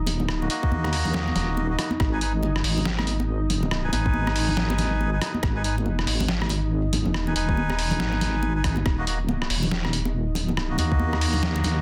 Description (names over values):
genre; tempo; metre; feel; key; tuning
deep dubstep; 140 BPM; 4/4; swing 61% on 16ths, half-time; unclear; A4 = 442 Hz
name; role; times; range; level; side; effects
deep dark ambient pad; sustained chords; 0.0-11.8 s; Eb4 to Eb5; -35 LUFS; equal; chorus, built-in reverb
deep soft wobble bass; bass; 0.0-11.8 s; Eb1 to Eb2; -28 LUFS; equal; chorus
trip hop sampler-style drum kit; drums; 0.1-11.7 s; hi-hat, rim click, snare drum; -31 LUFS; equal; none
congas; percussion; 0.1-11.7 s; none; -33 LUFS; equal; dub echo
melodica; stabs; 0.4-11.8 s; Bb3 to Ab5; -33 LUFS; equal; dub echo
electronic kick drum; drums; 0.6-11.0 s; none; -26 LUFS; equal; none
room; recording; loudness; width
light reverb; dense, heavily limited modern master; -24 LUFS; mono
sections
0.0-11.8 A section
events
none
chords
0.0 Ebm; 2.0 Abm; 8.9 Ebm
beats
| 0.28 0.71 1.14 1.57 | 2.00 2.43 2.86 3.29 | 3.71 4.14 4.57 5.00 | 5.43 5.86 6.29 6.71 | 7.14 7.57 8.00 8.43 | 8.86 9.29 9.71 10.14 | 10.57 11.00 11.43